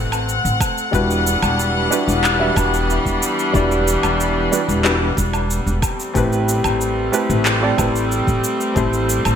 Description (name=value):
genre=sunset chillout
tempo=92 BPM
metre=4/4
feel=straight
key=E minor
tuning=A4 = 436 Hz
part: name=rich chamber string section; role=sustained chords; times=0.0-9.4 s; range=E3 to F#5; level=-20 LUFS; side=left 1 dB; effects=none
part: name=upright bass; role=bass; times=0.0-9.4 s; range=E1 to A1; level=-21 LUFS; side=equal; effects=none
part: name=electronic woodblock, cabasa and handclaps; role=drums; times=0.1-9.4 s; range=none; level=-23 LUFS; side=right 1 dB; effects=overdrive, gated reverb
part: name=electronic kick drum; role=drums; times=0.6-8.9 s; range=none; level=-23 LUFS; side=equal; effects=overdrive
part: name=dark grand piano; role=accompaniment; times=0.9-9.4 s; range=G3 to E5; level=-22 LUFS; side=equal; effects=auto-pan, digital delay
room=wet plate reverb, RT60 2.6 s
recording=bright 1980s-style digital production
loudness=-15 LUFS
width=side -8 dB against mid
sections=0.0-9.4 A section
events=none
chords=0.0 Am; 0.9 Em9; 5.8 Am9